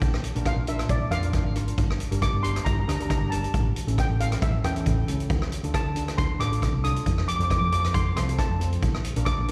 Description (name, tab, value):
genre	calypso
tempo	136 BPM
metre	4/4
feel	swing 54% on 16ths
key	D minor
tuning	A4 = 439 Hz
part	steel pan	melody	0.0-9.5 s	D5 to Eb6	-33 LUFS	equal	slapback echo, digital delay
part	hollow-body short-scale fingered electric bass	bass	0.0-9.5 s	G1 to F2	-29 LUFS	equal	none
part	street-band drum kit	drums	0.0-9.5 s	hi-hat, kick drum, rim click	-29 LUFS	equal	none
part	steel pan	accompaniment	0.4-9.5 s	C4 to Bb4	-36 LUFS	equal	none
room	small room ambience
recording	live gig heard through the venue's PA, recital hall reverb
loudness	-25 LUFS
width	mono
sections	0.0-9.5 A section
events	none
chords	0.0 Bb; 1.8 Gm; 3.5 A; 5.3 Dm7; 7.1 F; 8.8 Bb